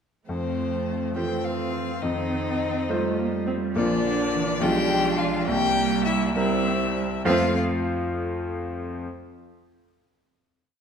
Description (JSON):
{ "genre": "quick classical-period movement for piano quintet", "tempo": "69 BPM (dotted quarters)", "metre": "6/8", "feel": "straight", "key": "F major", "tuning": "A4 = 439 Hz", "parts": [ { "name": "clear violin", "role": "melody", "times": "0.3-7.6 s", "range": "C5 to G5", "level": "-29 LUFS", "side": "left 6 dB", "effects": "none" }, { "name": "rich cello", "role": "second line", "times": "0.3-7.6 s", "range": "D3 to A3", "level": "-29 LUFS", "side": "right 7 dB", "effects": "none" }, { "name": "rich violin", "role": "second line", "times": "0.3-7.6 s", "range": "C4 to G4", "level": "-32 LUFS", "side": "left 3 dB", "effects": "none" }, { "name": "bright grand piano", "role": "accompaniment", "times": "0.3-9.1 s", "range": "Bb1 to F5", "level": "-26 LUFS", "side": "left 2 dB", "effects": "none" }, { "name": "rich viola", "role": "accompaniment", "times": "0.3-7.6 s", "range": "A3 to D4", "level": "-29 LUFS", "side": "right 4 dB", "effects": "none" } ], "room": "wet scoring stage reverb, RT60 1.8 s", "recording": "dark, warm production", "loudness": "-22 LUFS", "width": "side -7 dB against mid", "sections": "0.3-7.3 A section; 7.3-9.0 final chord", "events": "none", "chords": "0.3 F; 2.0 F7; 3.8 Bb; 4.6 Bdim7; 5.5 C7; 7.3 F" }